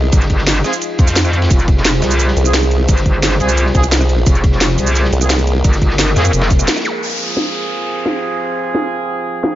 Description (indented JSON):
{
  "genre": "dark technical drum and bass",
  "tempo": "174 BPM",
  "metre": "4/4",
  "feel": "straight",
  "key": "F minor",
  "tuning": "A4 = 438 Hz",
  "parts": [
    { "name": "deep dark ambient pad", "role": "sustained chords", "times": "0.0-9.6 s", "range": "F4 to G5", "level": "-22 LUFS", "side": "equal", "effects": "chorus, built-in reverb, sidechain pumping" },
    { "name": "formant-sweep wobble bass", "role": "bass", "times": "0.0-0.1, 2.4-5.6 s", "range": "C2", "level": "-14 LUFS", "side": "equal", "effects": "chorus" },
    { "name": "metallic wobble bass", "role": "bass", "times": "0.1-6.7 s", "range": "F1 to F2", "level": "-14 LUFS", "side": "equal", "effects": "chorus, overdrive, sidechain pumping" },
    { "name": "crunchy breakbeat drum kit", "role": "drums", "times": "0.1-6.9 s", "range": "ride cymbal, snare drum", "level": "-26 LUFS", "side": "equal", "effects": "high-pass filter on cymbals, studio reverb, high-pass filter on snare, high-pass filter on room" },
    { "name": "drum and bass drum kit", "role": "drums", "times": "0.1-9.6 s", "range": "hi-hat, rim click, shaker, snare drum", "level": "-17 LUFS", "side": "equal", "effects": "low-pass filter on hats, studio reverb, low-pass filter on cymbals, low-pass filter on perc, low-pass filter on snare" },
    { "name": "electronic kick drum", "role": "drums", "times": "0.1-6.6 s", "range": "none", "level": "-12 LUFS", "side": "equal", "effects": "studio reverb" },
    { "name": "warm brass ensemble", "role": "stabs", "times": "0.6-9.6 s", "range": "C4 to Ab4", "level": "-22 LUFS", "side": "right 2 dB", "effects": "low-pass filter, tape echo" },
    { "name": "zap and downlifter", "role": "sound effects", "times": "6.9-9.6 s", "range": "none", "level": "-23 LUFS", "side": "equal", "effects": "none" }
  ],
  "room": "light reverb",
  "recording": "nothing above 7.5 kHz",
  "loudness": "-12 LUFS",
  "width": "side -13 dB against mid",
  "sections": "0.0-7.0 A section; 7.0-9.6 B section",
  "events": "drop 0.0-7.0; break 6.7-7.0; band accent 6.7; filter sweep on brass ensemble 7.0-9.6",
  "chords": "0.0 Fm",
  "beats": "| 0.13 0.47 0.82 1.16 | 1.51 1.85 2.20 2.54 | 2.89 3.23 3.58 3.92 | 4.26 4.61 4.96 5.30 | 5.64 5.99 6.33 6.68 | 7.02 7.37 7.71 8.06 | 8.40 8.75 9.09 9.44"
}